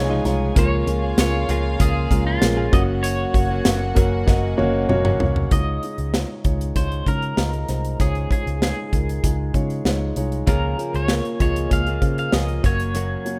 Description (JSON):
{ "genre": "piano-driven pop", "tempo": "97 BPM", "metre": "4/4", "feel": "straight", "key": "unclear", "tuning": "A4 = 440 Hz", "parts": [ { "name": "dark studio violin section", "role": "second line", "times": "0.0-5.5 s", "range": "F4 to Ab5", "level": "-34 LUFS", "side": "equal", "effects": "digital delay" }, { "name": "dark grand piano", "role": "accompaniment", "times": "0.0-13.4 s", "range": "Db3 to Bb5", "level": "-28 LUFS", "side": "equal", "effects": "none" }, { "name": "direct-recorded clean electric guitar", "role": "riff", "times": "0.0-5.5, 10.5-13.4 s", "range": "Gb2 to Ab4", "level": "-30 LUFS", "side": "equal", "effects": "subtle chorus" }, { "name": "vintage muted picked electric bass", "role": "bass", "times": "0.0-13.2 s", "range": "Gb1 to Db3", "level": "-26 LUFS", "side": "equal", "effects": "none" }, { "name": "modern studio drum kit", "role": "drums", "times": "0.3-13.4 s", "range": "hi-hat, kick drum, snare drum, toms", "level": "-23 LUFS", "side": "equal", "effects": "none" }, { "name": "electric guitar at the edge of break-up", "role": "melody", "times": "0.6-13.4 s", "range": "F4 to F5", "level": "-31 LUFS", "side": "equal", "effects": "tremolo" } ], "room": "studio ambience", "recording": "rough home demo mix", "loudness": "-21 LUFS", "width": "mono", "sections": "0.0-5.5 A section; 5.5-13.4 B section", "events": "grand piano fill 0.0-0.6; drum fill 4.3-5.5", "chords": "0.0 Dbadd9; 0.6 Bbm7/Db; 2.7 Gb; 5.5 Dbadd9; 10.5 Bbm7/Db; 12.6 Gb", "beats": "| 0.57 1.19 1.80 2.42 | 3.04 3.66 4.28 4.90 | 5.52 6.14 6.76 7.38 | 8.00 8.62 9.23 9.86 | 10.47 11.09 11.71 12.33 | 12.95" }